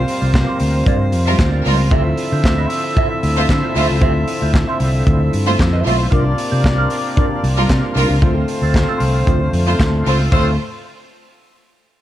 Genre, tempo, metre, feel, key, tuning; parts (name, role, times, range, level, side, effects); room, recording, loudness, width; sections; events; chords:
disco; 114 BPM; 4/4; straight; D minor; A4 = 440 Hz
overdriven tonewheel organ; sustained chords; 0.0-10.6 s; C3 to F4; -23 LUFS; equal; chorus vibrato, slow rotary speaker
warm horn section; stabs; 0.0-10.5 s; G3 to E5; -24 LUFS; left 2 dB
fingered electric bass; bass; 0.0-10.6 s; B1 to D3; -17 LUFS; equal
mellow electric guitar; accompaniment; 0.1-10.5 s; C4 to F5; -25 LUFS; right 3 dB; wah, phaser
modern studio drum kit; drums; 0.1-10.4 s; crash cymbal, handclaps, hi-hat, kick drum, snare drum; -19 LUFS; equal
clear studio string section; second line; 1.3-10.6 s; G3 to C5; -21 LUFS; equal
light reverb; dark, warm production; -13 LUFS; side -13 dB against mid
0.0-10.3 A section; 10.3-12.0 B section
0.0 C9sus4; 1.9 Dm9; 6.1 C9sus4; 8.2 Dm7